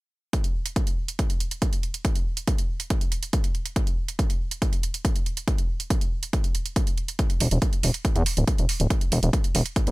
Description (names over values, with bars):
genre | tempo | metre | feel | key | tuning
driving peak-time techno | 140 BPM | 4/4 | straight | unclear | A4 = 442 Hz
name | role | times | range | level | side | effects
electronic hi-hat | drums | 0.3-9.9 s | none | -31 LUFS | right 5 dB | sidechain pumping on hats
electronic kick drum | drums | 0.3-9.8 s | none | -24 LUFS | equal | none
gritty driven synth bass | bass | 7.4-9.9 s | D1 to E2 | -21 LUFS | equal | sidechain pumping
room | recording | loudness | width
little or no reverb | none | -23 LUFS | side -21 dB against mid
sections
0.3-9.9 A section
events
none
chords
none